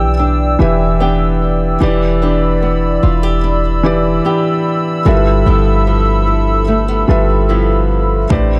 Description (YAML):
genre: contemporary R&B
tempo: 74 BPM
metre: 4/4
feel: straight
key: unclear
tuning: A4 = 441 Hz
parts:
  - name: felt-muted upright piano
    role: accompaniment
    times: 0.0-8.6 s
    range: E3 to E5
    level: -19 LUFS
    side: equal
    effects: none
  - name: hollow soft pad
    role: sustained chords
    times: 0.0-8.6 s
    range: C4 to E6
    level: -21 LUFS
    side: equal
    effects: chorus, sidechain pumping
  - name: flamenco guitar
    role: arpeggios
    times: 0.0-8.6 s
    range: G2 to G4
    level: -22 LUFS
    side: equal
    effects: digital delay
  - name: warm 808-style bass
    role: bass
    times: 0.0-8.6 s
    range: E1 to B1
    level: -17 LUFS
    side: equal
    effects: none
  - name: electronic kick drum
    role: drums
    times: 8.3-8.5 s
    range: none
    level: -19 LUFS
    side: equal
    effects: none
room: little or no reverb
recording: none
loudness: -14 LUFS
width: mono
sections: 0.0-8.6 A section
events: none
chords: 0.0 Em7; 5.1 G13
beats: 0.19 1.00 | 1.81 2.62 3.44 4.25 | 5.06 5.87 6.68 7.49 | 8.30